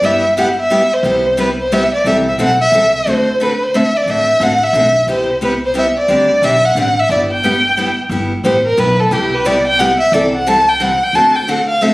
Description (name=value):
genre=acoustic string swing (jazz manouche)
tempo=178 BPM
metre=3/4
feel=swing 62% on 8ths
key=G major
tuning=A4 = 437 Hz
part: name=warm violin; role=melody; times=0.0-11.9 s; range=G4 to A5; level=-12 LUFS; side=equal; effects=none
part: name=picked steel-string acoustic guitar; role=accompaniment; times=0.0-11.9 s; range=C3 to A4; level=-18 LUFS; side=left 1 dB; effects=none
part: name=upright bass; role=bass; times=0.0-11.9 s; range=G1 to D2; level=-23 LUFS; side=equal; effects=none
room=moderate studio reverb, RT60 0.9 s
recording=recorded on a phone in the room, studio reverb, compression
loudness=-11 LUFS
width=side -20 dB against mid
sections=0.0-8.1 A section; 8.1-11.9 B section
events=violin solo 8.1-11.9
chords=0.0 G6; 1.0 Cmaj7; 2.0 Am7; 3.1 D7; 5.1 Cmaj7; 6.1 D7sus4; 7.1 G6; 9.1 Cmaj7; 10.1 Am7/C; 11.1 D7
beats=| 0.03 0.36 0.70 | 1.03 1.37 1.71 | 2.04 2.38 2.72 | 3.06 3.39 3.73 | 4.07 4.40 4.74 | 5.08 5.41 5.75 | 6.09 6.42 6.76 | 7.10 7.43 7.77 | 8.11 8.44 8.78 | 9.12 9.45 9.79 | 10.12 10.46 10.80 | 11.13 11.47 11.81